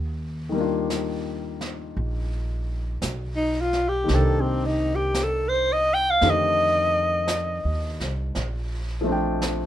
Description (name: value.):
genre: jazz ballad.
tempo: 56 BPM.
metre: 4/4.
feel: swing 66% on 8ths.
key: unclear.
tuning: A4 = 440 Hz.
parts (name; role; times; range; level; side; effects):
upright bass; bass; 0.0-9.7 s; Bb1 to F2; -28 LUFS; right 1 dB; none.
warm baby grand piano; accompaniment; 0.5-9.7 s; D3 to G5; -28 LUFS; left 3 dB; none.
vintage brush drum kit; drums; 0.9-9.7 s; brushed snare drum, hi-hat, snare drum; -34 LUFS; right 2 dB; none.
growling alto saxophone; melody; 3.4-8.0 s; C4 to G5; -22 LUFS; equal; none.
room: light reverb.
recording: minimal, uncompressed stereo recording.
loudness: -22 LUFS.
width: side -12 dB against mid.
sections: 0.0-9.7 A section.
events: alto saxophone solo 0.0-9.7.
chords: 0.0 Ebmaj9; 4.1 Cm9; 6.2 F13; 8.4 Bbmaj13.